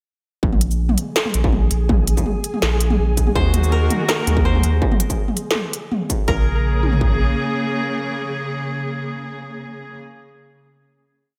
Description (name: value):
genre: half-time drum and bass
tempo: 164 BPM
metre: 4/4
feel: swing 53% on 16ths, half-time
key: Bb minor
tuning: A4 = 440 Hz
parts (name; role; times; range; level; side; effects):
- saturated sub bass; bass; 0.4-7.3 s; Bb1 to Eb2; -20 LUFS; equal; none
- industrial drum kit; drums; 0.4-7.1 s; kick drum, toms; -22 LUFS; equal; distortion
- flickering grainy texture; texture; 1.0-6.3 s; Ab4; -32 LUFS; equal; built-in reverb
- industrial drum kit; drums; 0.5-6.2 s; hi-hat, shaker, snare drum, toms; -24 LUFS; equal; none
- warm chamber cello section; sustained chords; 3.4-10.0 s; Db3 to Ab4; -26 LUFS; equal; sidechain pumping
- koto; arpeggios; 3.4-8.1 s; Bb4 to C5; -29 LUFS; equal; analog delay
room: light reverb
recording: none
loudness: -19 LUFS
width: mono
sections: 0.4-6.3 drop; 6.3-9.2 final chord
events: drop 0.4-6.3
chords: 0.4 Absus2/Bb; 3.4 Ebm; 6.3 Bbm7